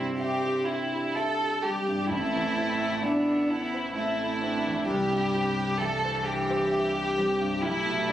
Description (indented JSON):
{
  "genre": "neoclassical piano and strings",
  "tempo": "65 BPM",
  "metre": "3/4",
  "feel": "rubato",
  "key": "C major",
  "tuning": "A4 = 440 Hz",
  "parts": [
    { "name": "warm chamber violin section", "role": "melody", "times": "0.0-8.1 s", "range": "D4 to A4", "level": "-27 LUFS", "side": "equal", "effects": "none" },
    { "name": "clear cello", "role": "second line", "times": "0.0-8.1 s", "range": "E3 to C4", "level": "-31 LUFS", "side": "right 1 dB", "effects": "none" },
    { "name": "clear grand piano", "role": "accompaniment", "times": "0.0-8.1 s", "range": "A1 to A5", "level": "-33 LUFS", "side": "equal", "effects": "none" },
    { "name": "dark viola", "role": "accompaniment", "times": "2.1-8.1 s", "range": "C4 to A4", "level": "-36 LUFS", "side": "equal", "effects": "none" },
    { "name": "punchy sub bass", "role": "bass", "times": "2.1-8.1 s", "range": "A1 to C2", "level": "-40 LUFS", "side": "left 2 dB", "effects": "none" }
  ],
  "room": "light reverb",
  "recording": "recorded on a phone in the room, club reverb, compression",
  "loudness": "-25 LUFS",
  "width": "side -12 dB against mid",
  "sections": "0.0-2.1 A section; 2.1-8.1 A section",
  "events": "none",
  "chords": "0.0 C; 2.1 Am; 4.9 C; 7.6 G/B"
}